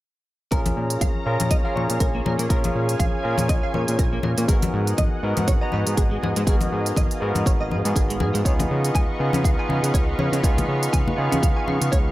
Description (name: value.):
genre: nu-disco, nu disco.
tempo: 121 BPM.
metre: 4/4.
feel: swing 56% on 16ths.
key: unclear.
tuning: A4 = 437 Hz.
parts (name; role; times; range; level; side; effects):
barky tine electric piano; accompaniment; 0.5-12.1 s; B3 to A#5; -26 LUFS; equal; sidechain pumping, analog delay.
lush unison pad; sustained chords; 0.5-12.1 s; G#4 to C#6; -31 LUFS; equal; chorus, sidechain pumping.
direct-recorded clean electric guitar; riff; 0.5-12.0 s; G#3 to G#5; -31 LUFS; right 2 dB; ensemble chorus, analog delay.
fat analog bass; bass; 0.5-12.1 s; G#1 to C#3; -25 LUFS; equal; sidechain pumping.
electronic hi-hat; drums; 0.5-12.0 s; none; -30 LUFS; right 1 dB; studio reverb.
electronic kick drum; drums; 0.5-12.0 s; none; -21 LUFS; equal; studio reverb.
congas; percussion; 0.7-11.8 s; none; -30 LUFS; left 3 dB; none.
room: light reverb.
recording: none.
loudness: -19 LUFS.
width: side -16 dB against mid.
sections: 0.5-12.1 A section.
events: none.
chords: 0.5 A#m7; 4.5 G#m7; 8.5 C#9.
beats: | 0.52 1.02 1.51 2.01 | 2.50 3.00 3.50 3.99 | 4.49 4.99 5.48 5.98 | 6.47 6.97 7.46 7.96 | 8.46 8.95 9.45 9.94 | 10.44 10.94 11.43 11.93.